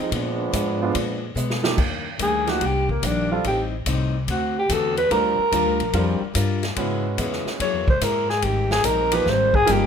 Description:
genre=jazz, big band swing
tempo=144 BPM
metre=4/4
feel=swing 67% on 8ths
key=Eb major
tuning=A4 = 440 Hz
part: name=warm trombone section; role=second line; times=0.0-1.3 s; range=F3 to Eb4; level=-26 LUFS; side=right 4 dB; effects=none
part: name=picked plugged-in steel-string acoustic guitar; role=accompaniment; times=0.1-9.9 s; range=Ab2 to Bb4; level=-28 LUFS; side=left 7 dB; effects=none
part: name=upright bass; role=bass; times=0.1-9.9 s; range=G1 to Cb3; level=-26 LUFS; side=equal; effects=none
part: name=swinging big-band drum kit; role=drums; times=0.1-9.8 s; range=crash cymbal, hi-hat, kick drum, ride cymbal, snare drum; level=-27 LUFS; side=equal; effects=none
part: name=clear baby grand piano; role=accompaniment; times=0.8-9.9 s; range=F3 to Cb5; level=-28 LUFS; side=right 6 dB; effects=none
part: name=growling alto saxophone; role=melody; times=2.2-9.9 s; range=Bb3 to Db5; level=-21 LUFS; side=equal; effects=none
room=light reverb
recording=minimal, uncompressed stereo recording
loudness=-19 LUFS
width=side -7 dB against mid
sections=0.0-1.8 A section; 1.8-9.9 B section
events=trombone section solo 0.0-1.8; drum fill 1.4-1.8; alto saxophone solo 1.8-9.9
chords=0.1 Bb7b9; 1.8 Ebmaj7; 3.4 Am7b5; 4.3 D7; 5.1 Gm7; 6.8 Dbm7; 7.6 Gb9; 8.4 Abmaj7

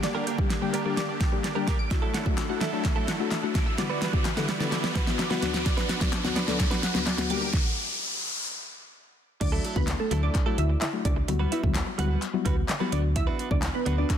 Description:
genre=dance-pop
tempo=128 BPM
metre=4/4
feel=straight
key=D major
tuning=A4 = 440 Hz
part: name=deep mellow chord stab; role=accompaniment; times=0.0-14.1 s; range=D2 to A4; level=-32 LUFS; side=left 8 dB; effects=chorus, sidechain pumping
part: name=supersaw chords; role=sustained chords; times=0.0-7.5 s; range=D3 to B4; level=-35 LUFS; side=right 1 dB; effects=sidechain pumping
part: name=tight sequenced synth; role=arpeggios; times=0.0-7.5 s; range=D5 to D7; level=-36 LUFS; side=right 3 dB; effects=chorus, phaser, sidechain pumping, digital delay
part: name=direct-recorded clean electric guitar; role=riff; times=0.0-14.1 s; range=F#3 to B4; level=-35 LUFS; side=right 7 dB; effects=analog chorus
part: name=pop drum kit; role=drums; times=0.0-14.2 s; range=crash cymbal, handclaps, hi-hat, kick drum, snare drum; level=-27 LUFS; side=right 1 dB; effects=none
part: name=riser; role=sound effects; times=0.0-8.5 s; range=none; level=-33 LUFS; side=equal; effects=none
part: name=group handclap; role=percussion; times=2.4-14.2 s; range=none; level=-39 LUFS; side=left 8 dB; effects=none
part: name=glassy wavetable pluck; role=melody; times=9.4-14.2 s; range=A3 to F#5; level=-32 LUFS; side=right 2 dB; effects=chorus, digital delay
part: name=solid FM bass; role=bass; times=9.4-14.0 s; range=C#2 to D2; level=-27 LUFS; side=right 1 dB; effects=sidechain pumping
room=light reverb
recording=dense, heavily limited modern master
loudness=-24 LUFS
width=side -9 dB against mid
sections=0.0-9.4 A section; 9.4-14.2 B section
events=build-up 0.0-9.4; drum fill 0.0-7.5; riser 0.0-9.4; stop 7.5-9.4; drop 9.4-14.2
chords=0.0 Gm/D; 1.9 Dadd9; 3.8 Emadd9/D; 5.4 Bm/D; 7.3 Gm/D; 9.4 Dadd9; 11.3 Emadd9/D; 12.9 Bm/D

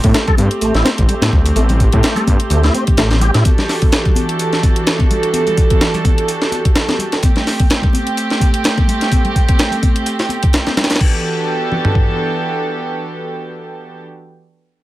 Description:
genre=breakbeat, breaks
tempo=127 BPM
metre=4/4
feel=swing 56% on 16ths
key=E minor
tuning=A4 = 440 Hz
part: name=dark studio string section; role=sustained chords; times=0.0-14.0 s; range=E3 to A4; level=-19 LUFS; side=right 2 dB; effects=sidechain pumping
part: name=tonewheel organ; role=riff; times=0.0-3.4 s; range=G3 to A4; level=-20 LUFS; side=equal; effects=chorus vibrato, fast rotary speaker, tube saturation, vintage 12-bit sampler grit, digital delay
part: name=detuned saw bass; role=bass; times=0.0-3.4 s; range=A1 to A2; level=-14 LUFS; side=equal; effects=tube saturation
part: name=breakbeat sampler-style drum kit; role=drums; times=0.0-12.1 s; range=crash cymbal, hi-hat, kick drum, snare drum, toms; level=-14 LUFS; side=equal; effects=small room ambience
part: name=electronic hi-hat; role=drums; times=0.0-11.0 s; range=none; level=-28 LUFS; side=left 2 dB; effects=small room ambience
part: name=congas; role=percussion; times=0.0-10.9 s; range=none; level=-25 LUFS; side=left 4 dB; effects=none
room=light reverb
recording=none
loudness=-12 LUFS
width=side -16 dB against mid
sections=0.0-11.0 A section; 11.0-14.8 B section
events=none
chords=0.0 Am7; 3.4 Em11; 7.2 Am7; 11.0 Em11

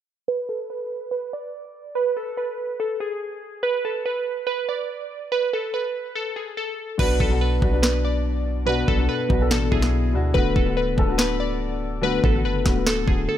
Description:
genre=hip hop, trap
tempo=143 BPM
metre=4/4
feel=half-time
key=B dorian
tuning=A4 = 440 Hz
part: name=glassy digital keys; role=melody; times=0.3-13.4 s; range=G#4 to D5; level=-25 LUFS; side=right 2 dB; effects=chorus, low-pass filter
part: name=dark concert grand piano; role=accompaniment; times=7.0-13.4 s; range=B2 to A4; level=-25 LUFS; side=left 4 dB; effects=none
part: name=warm 808-style bass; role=bass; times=7.0-13.3 s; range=D1 to D2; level=-24 LUFS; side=equal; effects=none
part: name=trap drum kit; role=drums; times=7.0-13.2 s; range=crash cymbal, kick drum, snare drum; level=-22 LUFS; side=equal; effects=none
room=little or no reverb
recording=none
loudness=-21 LUFS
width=side -11 dB against mid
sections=0.3-7.0 A section; 7.0-13.4 B section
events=filter sweep on synth keys 0.3-7.0; hi-hats muted 7.0-13.4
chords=0.3 N.C.; 7.0 Bm; 10.3 D6

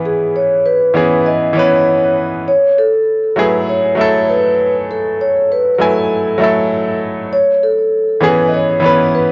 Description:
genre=chillout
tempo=99 BPM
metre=4/4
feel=straight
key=F# minor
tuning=A4 = 440 Hz
part: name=bright grand piano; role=accompaniment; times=0.0-9.3 s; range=E3 to G#5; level=-18 LUFS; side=equal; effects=analog delay
part: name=vibraphone with soft mallets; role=melody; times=0.1-9.3 s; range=G#4 to D#5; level=-16 LUFS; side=equal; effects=cassette tape, analog delay
room=moderate spring reverb, RT60 1.6 s, studio ambience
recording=home recording on cassette, nothing above 7.5 kHz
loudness=-14 LUFS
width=mono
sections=0.0-9.3 A section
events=none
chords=0.0 E6; 2.5 F#m9; 7.3 E6

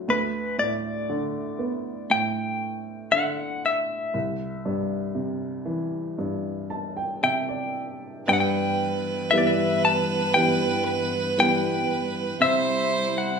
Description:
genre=acoustic folk-pop ballad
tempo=58 BPM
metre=4/4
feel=straight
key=G major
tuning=A4 = 441 Hz
part: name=warm upright piano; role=accompaniment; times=0.0-13.4 s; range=C2 to A5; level=-28 LUFS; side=equal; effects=none
part: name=direct-recorded clean electric guitar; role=melody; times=0.1-13.4 s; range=B4 to A5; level=-24 LUFS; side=left 2 dB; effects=tremolo
part: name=clear violin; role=second line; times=8.3-13.4 s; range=B4 to C5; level=-27 LUFS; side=right 4 dB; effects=none
part: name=warm chamber string section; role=sustained chords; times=8.3-13.4 s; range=G2 to E4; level=-31 LUFS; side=equal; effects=none
room=wet large studio reverb, RT60 0.8 s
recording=band playing live in one room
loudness=-22 LUFS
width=side -6 dB against mid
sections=0.0-8.3 A section; 8.3-13.4 B section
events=none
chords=0.1 Gadd9/D; 4.1 C; 8.3 G6; 12.4 C

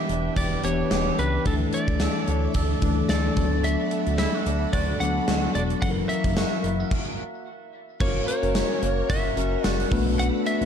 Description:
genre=1980s-style pop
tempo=110 BPM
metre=4/4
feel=swing 55% on 16ths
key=unclear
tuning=A4 = 436 Hz
part: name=lightly driven lead guitar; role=melody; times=0.0-10.7 s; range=A4 to F#5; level=-30 LUFS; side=right 2 dB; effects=ping-pong delay
part: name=mellow tine electric piano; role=accompaniment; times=0.0-10.7 s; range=E3 to B4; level=-27 LUFS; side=left 5 dB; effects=none
part: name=string machine, violas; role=sustained chords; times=0.0-10.7 s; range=A4 to D6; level=-35 LUFS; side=right 1 dB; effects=ensemble chorus
part: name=clean electric guitar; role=riff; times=0.0-10.7 s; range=E3 to A4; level=-33 LUFS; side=right 5 dB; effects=analog chorus, ping-pong delay
part: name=smooth synth bass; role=bass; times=0.1-10.7 s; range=E1 to D2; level=-27 LUFS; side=equal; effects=none
part: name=gated 80s drum kit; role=drums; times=0.1-10.7 s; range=crash cymbal, hi-hat, kick drum, snare drum, tambourine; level=-27 LUFS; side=equal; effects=none
room=light reverb, studio ambience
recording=dark, warm production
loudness=-21 LUFS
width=side -8 dB against mid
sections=0.0-8.0 A section; 8.0-10.7 B section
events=stop 6.9-8.0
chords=0.0 Em7; 1.5 Dsus2; 3.4 Bm7/D; 5.8 F#7; 8.0 F#; 9.9 Bm7

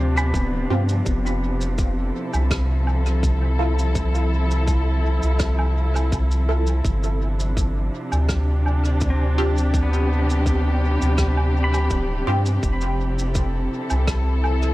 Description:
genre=ambient dub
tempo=83 BPM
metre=4/4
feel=swing 54% on 16ths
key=G mixolydian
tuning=A4 = 441 Hz
part: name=muted studio string section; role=sustained chords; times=0.0-14.7 s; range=C3 to A4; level=-26 LUFS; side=equal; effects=none
part: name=pedal steel guitar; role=arpeggios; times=0.0-2.2, 9.1-13.6 s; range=B3 to B5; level=-30 LUFS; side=left 2 dB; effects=dub echo
part: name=soft dub sub bass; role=bass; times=0.0-14.7 s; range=D1 to G2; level=-20 LUFS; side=equal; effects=none
part: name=shaker, woodblock and rim click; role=drums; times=0.2-14.7 s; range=none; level=-32 LUFS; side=right 2 dB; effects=dub echo
part: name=electronic kick drum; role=drums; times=0.3-14.2 s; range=none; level=-24 LUFS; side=equal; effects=none
part: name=filtered dub chord stab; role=stabs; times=0.7-12.4 s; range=C4 to A4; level=-30 LUFS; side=right 1 dB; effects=phaser, lush chorus, dub echo
room=studio reverb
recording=echo-heavy mix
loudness=-19 LUFS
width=side -17 dB against mid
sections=0.0-14.7 A section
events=none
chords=0.0 G7sus4; 1.1 Fmaj7; 6.8 G7sus4; 12.6 Fmaj7

